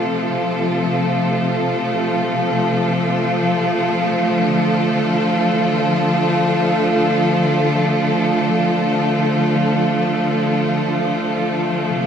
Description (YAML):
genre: ambient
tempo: free time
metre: none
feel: none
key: D minor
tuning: A4 = 439 Hz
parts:
  - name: clear chamber string section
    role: solo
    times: 0.0-12.1 s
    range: C3 to A4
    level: -15 LUFS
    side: equal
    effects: none
room: wet cathedral reverb, RT60 5.5 s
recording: in a vast, echoing space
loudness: -15 LUFS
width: side -8 dB against mid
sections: 0.0-4.4 A section; 4.4-12.1 A section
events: none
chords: 0.0 F; 4.4 Dm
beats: free time